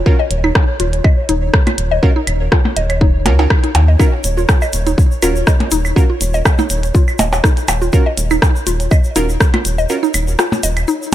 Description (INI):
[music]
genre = minimal techno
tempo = 122 BPM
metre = 4/4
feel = swing 54% on 16ths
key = Eb minor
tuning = A4 = 440 Hz
[part]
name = rubbery square bass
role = bass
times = 0.0-11.1 s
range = Eb1 to Eb2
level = -16 LUFS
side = equal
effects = sidechain pumping
[part]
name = pulsing gated texture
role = texture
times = 0.0-11.1 s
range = Db5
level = -27 LUFS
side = right 1 dB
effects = chorus, built-in reverb, sidechain pumping
[part]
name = wavetable chord stab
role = stabs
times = 0.1-10.0 s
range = Db4 to Bb4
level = -23 LUFS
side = right 4 dB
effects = dub echo
[part]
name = electronic kick drum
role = drums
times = 0.1-9.5 s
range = none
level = -12 LUFS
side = equal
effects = none
[part]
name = mallet-like synth pluck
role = riff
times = 0.2-10.9 s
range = Eb4 to Eb5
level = -20 LUFS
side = equal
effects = chorus, sidechain pumping, digital delay
[part]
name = minimal click drum kit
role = drums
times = 0.3-11.1 s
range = hi-hat, rim click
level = -20 LUFS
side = equal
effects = none
[part]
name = claves and percussion blips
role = percussion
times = 0.4-11.1 s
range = none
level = -21 LUFS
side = equal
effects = dub echo
[part]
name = egg shaker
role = percussion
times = 4.0-11.1 s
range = none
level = -26 LUFS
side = left 2 dB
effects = none
[sound]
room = digital ambience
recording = none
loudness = -12 LUFS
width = side -12 dB against mid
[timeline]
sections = 0.0-11.1 A section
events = kick drops out 9.9-11.1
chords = 0.0 Eb7(no3)